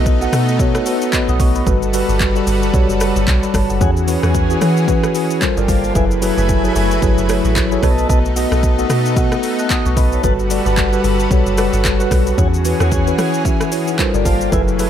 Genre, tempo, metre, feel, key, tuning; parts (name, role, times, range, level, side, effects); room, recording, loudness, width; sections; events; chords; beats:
amapiano; 112 BPM; 4/4; swing 58% on 16ths; A4 = 441 Hz
mellow tine electric piano; accompaniment; 0.0-14.9 s; E3 to F#6; -18 LUFS; left 1 dB; medium stereo tremolo
lush unison pad; sustained chords; 0.0-14.9 s; E3 to G#5; -23 LUFS; equal; chorus, sidechain pumping
deep log drum bass; bass; 0.0-14.9 s; F#1 to E3; -18 LUFS; equal
deep house drum kit; drums; 0.1-14.9 s; handclaps, hi-hat, kick drum, rim click, shaker; -19 LUFS; equal; overdrive
mellow tonewheel organ; stabs; 3.8-14.6 s; A4 to A5; -25 LUFS; equal; slow rotary speaker, digital delay
digital ambience; -13 LUFS; side -10 dB against mid
0.0-14.9 A section
0.0 B7; 1.7 Gmaj9; 3.8 E69; 5.4 Gm11; 6.0 F#m11; 7.8 B7; 10.2 Gmaj9; 12.4 E69; 14.0 Gm11
0.06 0.60 1.13 | 1.67 2.20 2.74 3.27 | 3.81 4.35 4.88 5.42 | 5.95 6.49 7.02 7.56 | 8.10 8.63 9.17 9.70 | 10.24 10.77 11.31 11.85 | 12.38 12.92 13.45 13.99 | 14.52